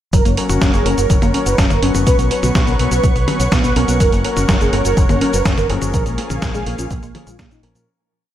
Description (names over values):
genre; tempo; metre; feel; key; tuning
italo disco; 124 BPM; 4/4; straight; F# major; A4 = 440 Hz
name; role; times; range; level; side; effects
mellow synth brass; melody; 0.1-7.8 s; A#3 to C#5; -21 LUFS; right 1 dB; chorus, tape echo
lush unison pad; sustained chords; 0.1-7.9 s; A#4 to C#6; -25 LUFS; right 1 dB; chorus
analog pluck; arpeggios; 0.1-7.9 s; E#3 to G#4; -25 LUFS; right 1 dB; chorus, digital delay
fingered electric bass; bass; 0.1-7.9 s; F#1 to A#2; -20 LUFS; equal; none
dusty soul sampler-style drum kit; drums; 0.1-7.8 s; cabasa, hi-hat, snare drum, toms; -22 LUFS; equal; small room ambience
electronic kick drum; drums; 0.1-7.5 s; none; -17 LUFS; equal; small room ambience
clear concert grand piano; stabs; 0.4-7.9 s; E#3 to B4; -24 LUFS; left 3 dB; low-pass filter
room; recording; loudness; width
light reverb; none; -13 LUFS; side -12 dB against mid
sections
0.1-7.9 verse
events
filter sweep on grand piano 0.1-7.9; fade-out 5.3-7.9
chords
0.1 F#; 2.1 Bsus2; 4.0 F#; 5.9 A#m7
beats
| 0.13 0.62 1.10 1.58 | 2.07 2.55 3.04 3.52 | 4.00 4.49 4.97 5.46 | 5.94 6.42 6.91 7.39